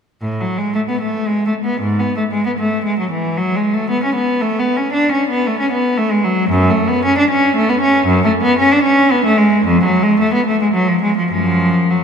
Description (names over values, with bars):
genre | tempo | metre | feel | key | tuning
classical, baroque-style suite movement for unaccompanied cello | 101-118 BPM | 3/4 | rubato | A major, F# minor from 6.5 s | A4 = 439 Hz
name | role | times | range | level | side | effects
rich cello | solo | 0.2-12.0 s | E#2 to D4 | -13 LUFS | equal | none
room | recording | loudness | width
wet church reverb, RT60 3.4 s | none | -13 LUFS | side -7 dB against mid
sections
0.2-12.0 A section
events
none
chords
none